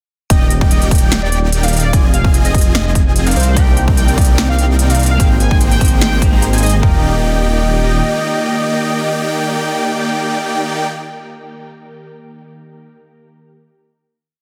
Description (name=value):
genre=future bass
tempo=147 BPM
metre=4/4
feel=half-time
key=Eb major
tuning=A4 = 438 Hz
part: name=warm velvety synth lead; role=melody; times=0.3-10.9 s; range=C5 to Ab5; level=-25 LUFS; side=equal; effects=chorus, sidechain pumping, delay
part: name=ethereal airy pad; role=sustained chords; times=1.7-10.9 s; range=C3 to D5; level=-32 LUFS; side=equal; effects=none
part: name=airy dreamy lead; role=arpeggios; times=0.3-10.9 s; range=F5 to Bb5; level=-28 LUFS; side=equal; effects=chorus, sidechain pumping, tape echo
part: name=supersaw chords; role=riff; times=0.3-10.9 s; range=Bb3 to Bb5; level=-23 LUFS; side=equal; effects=sidechain pumping
part: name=detuned saw bass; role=bass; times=0.3-8.0 s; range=Eb1 to C2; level=-17 LUFS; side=equal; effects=chorus, sidechain pumping
part: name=big-room dance drum kit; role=drums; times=0.3-6.9 s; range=kick drum, toms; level=-14 LUFS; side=equal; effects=none
part: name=big-room dance drum kit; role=drums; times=0.3-6.8 s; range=hi-hat, snare drum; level=-22 LUFS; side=equal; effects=none
part: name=clean electric guitar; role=accompaniment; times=3.5-11.6 s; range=Bb3 to D5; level=-26 LUFS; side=equal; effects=sidechain pumping, tape echo
room=little or no reverb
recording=dense, heavily limited modern master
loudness=-14 LUFS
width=mono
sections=0.3-6.8 drop; 6.8-10.1 final chord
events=drop 0.3-6.8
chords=0.3 Ebmaj7; 1.9 Fm7; 3.4 Cm9; 5.2 Abmaj9; 6.8 Ebmaj7